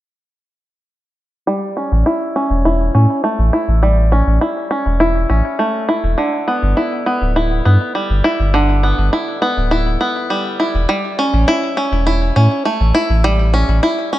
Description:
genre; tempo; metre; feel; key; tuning
folktronica; 102 BPM; 4/4; straight; A mixolydian; A4 = 441 Hz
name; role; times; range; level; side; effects
bluegrass banjo; arpeggios; 1.5-14.2 s; D3 to E4; -16 LUFS; equal; low-pass filter, ping-pong delay
warm sub bass; bass; 1.9-13.8 s; D1 to A2; -14 LUFS; equal; none
room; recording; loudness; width
light reverb, small room ambience; none; -13 LUFS; side -14 dB against mid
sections
1.5-14.2 A section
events
filter sweep on five-string banjo 1.5-14.2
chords
1.5 A7; 6.2 G6; 10.9 A7

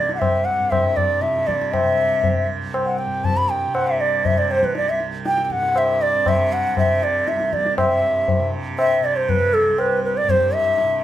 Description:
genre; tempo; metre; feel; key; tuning
indian classical, Hindustani; 119 BPM; 3/4; straight; C raga yaman; A4 = 439 Hz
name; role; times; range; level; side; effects
bansuri; melody; 0.0-11.0 s; A4 to B5; -18 LUFS; equal; none
tanpura; drone; 0.0-11.0 s; C2 to C3; -28 LUFS; right 3 dB; none
tabla; percussion; 0.1-11.0 s; none; -23 LUFS; left 2 dB; none
room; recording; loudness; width
moderate studio reverb, RT60 0.6 s; none; -17 LUFS; side -12 dB against mid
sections
0.0-7.8 A section; 7.8-11.0 B section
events
none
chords
none

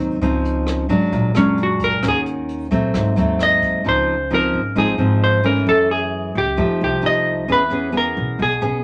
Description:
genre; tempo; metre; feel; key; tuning
bossa nova; 132 BPM; 4/4; straight; Db major; A4 = 440 Hz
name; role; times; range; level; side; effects
nylon-string guitar; accompaniment; 0.0-8.8 s; Gb2 to G#4; -22 LUFS; equal; none
upright bass; bass; 0.0-8.8 s; Ab1 to F#2; -27 LUFS; equal; none
jazz brush drum kit; drums; 0.2-3.7 s; hi-hat, kick drum, rim click; -34 LUFS; equal; none
vintage hollow-body jazz guitar; melody; 1.4-8.8 s; Db4 to Eb5; -20 LUFS; equal; none
room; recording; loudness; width
wet studio ambience, RT60 0.5 s; none; -18 LUFS; mono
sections
0.0-3.8 A section; 3.8-8.8 B section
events
hollow-body jazz guitar solo 0.0-3.8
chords
0.2 Dbmaj9; 1.1 Bbaug7; 2.0 Ebm7; 2.9 Ab7b9; 3.8 Dbmaj9; 5.7 Gbm7; 6.6 F9; 7.5 E6

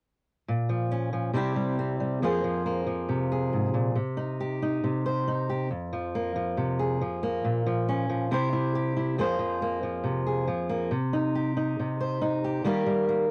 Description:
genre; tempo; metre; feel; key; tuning
folk; 138 BPM; 4/4; straight; F minor; A4 = 440 Hz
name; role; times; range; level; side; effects
fingerpicked steel-string acoustic guitar; accompaniment; 0.5-13.3 s; F2 to C5; -28 LUFS; equal; cassette tape
room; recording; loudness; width
wet booth ambience, RT60 0.2 s; home recording on cassette; -28 LUFS; mono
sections
0.5-13.3 A section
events
none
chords
0.5 Bbm; 1.4 C; 2.2 Fm; 4.0 Cm; 5.7 Fm; 7.4 Bbm; 8.3 C; 9.2 Fm; 10.9 Cm; 12.7 Eb

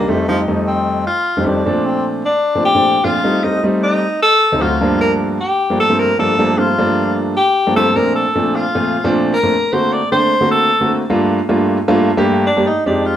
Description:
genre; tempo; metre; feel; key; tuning
jazz; 153 BPM; 4/4; straight; G minor, Bb major from 8.0 s; A4 = 440 Hz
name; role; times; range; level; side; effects
warm tenor saxophone; melody; 0.0-13.2 s; F3 to D5; -15 LUFS; left 1 dB; none
warm concert grand piano; accompaniment; 0.0-13.1 s; D2 to G4; -15 LUFS; equal; none
room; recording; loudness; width
moderate large studio reverb, RT60 1.0 s; band playing live in one room; -13 LUFS; side -10 dB against mid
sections
0.0-8.0 A section; 8.0-13.2 A section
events
tenor saxophone solo 0.0-13.2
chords
0.1 F7; 1.7 Bbmaj9; 3.2 Am7b5; 4.0 D7b9; 4.8 Gm9; 8.0 Bbmaj9; 9.5 D7b13; 11.1 Gm9; 12.7 Fm9

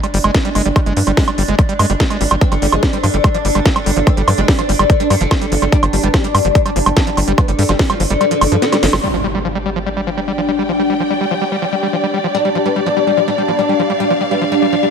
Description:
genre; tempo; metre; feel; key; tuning
psychedelic trance; 145 BPM; 4/4; straight; unclear; A4 = 439 Hz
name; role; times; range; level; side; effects
evolving wavetable pad; sustained chords; 0.0-14.9 s; D4; -22 LUFS; equal; chorus, built-in reverb, sidechain pumping
screaming distorted acid line; riff; 0.0-14.9 s; F3 to B3; -20 LUFS; equal; distortion, chorus, auto-pan, sidechain pumping, dub echo
techno drum kit; drums; 0.0-9.0 s; hi-hat, snare drum, woodblock; -18 LUFS; right 2 dB; none
tight sequencer bass; bass; 0.1-9.0 s; G1 to G2; -17 LUFS; equal; none
electronic kick drum; drums; 0.3-7.9 s; none; -14 LUFS; equal; overdrive
oud; melody; 2.4-9.0, 12.3-14.9 s; D3 to D4; -18 LUFS; left 2 dB; phaser, sidechain pumping, tape echo
impact and reverse cymbal; sound effects; 9.0-10.7, 14.9 s; none; -26 LUFS; equal; none
warm studio string section; texture; 9.0-14.9 s; G4 to G5; -21 LUFS; equal; sidechain pumping
resonant blip pluck; second line; 12.9-14.7 s; G3 to B3; -34 LUFS; right 5 dB; none
room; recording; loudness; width
light reverb; none; -12 LUFS; side -6 dB against mid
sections
0.0-9.0 A section; 9.0-14.9 B section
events
kick drops out 8.2-9.0; drum fill 8.6-9.0; band accent 8.9; impact 9.0-10.7; filter sweep on ambient pad 9.0-14.9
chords
0.0 G5

